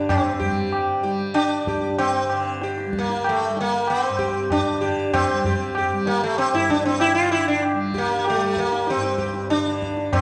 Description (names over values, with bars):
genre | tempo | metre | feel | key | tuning
indian classical, Hindustani | 96 BPM | 4/4 | straight | G raga bhimpalasi | A4 = 441 Hz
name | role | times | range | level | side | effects
sitar | melody | 0.0-10.2 s | A3 to G4 | -24 LUFS | equal | none
tanpura | drone | 0.0-10.2 s | G2 to G3 | -32 LUFS | equal | none
tabla | percussion | 0.1-10.2 s | none | -28 LUFS | equal | none
room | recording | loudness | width
wet recital hall reverb, RT60 1.4 s | recorded in a church or concert hall, nothing above 10.4 kHz | -22 LUFS | mono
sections
0.0-10.1 A section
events
none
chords
none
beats
| 0.10 0.73 1.36 1.99 | 2.62 3.25 3.88 4.51 | 5.13 5.76 6.38 7.01 | 7.63 8.26 8.88 9.50 | 10.12